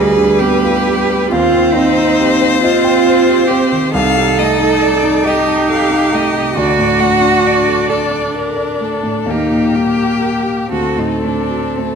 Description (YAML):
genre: classical, slow romantic movement for piano quartet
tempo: 45 BPM (dotted quarters)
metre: 6/8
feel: uneven beats, rubato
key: unclear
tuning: A4 = 440 Hz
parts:
  - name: clear violin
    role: melody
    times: 0.0-12.0 s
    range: G4 to F#5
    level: -18 LUFS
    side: left 8 dB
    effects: none
  - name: rich cello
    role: second line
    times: 0.0-12.0 s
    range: A3 to A4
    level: -15 LUFS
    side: right 4 dB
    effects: none
  - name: dark grand piano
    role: accompaniment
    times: 0.0-12.0 s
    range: C2 to D6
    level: -17 LUFS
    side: equal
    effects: none
  - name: rich viola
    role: accompaniment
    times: 0.0-12.0 s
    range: G3 to Eb4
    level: -19 LUFS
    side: right 1 dB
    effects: none
room: wet recital hall reverb, RT60 1.4 s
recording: none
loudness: -11 LUFS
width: side -6 dB against mid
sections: 0.0-12.0 A section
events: none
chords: 0.0 G7/D; 1.3 Cm/Eb; 3.9 Adim/C; 6.6 D; 9.3 Eb; 10.7 D7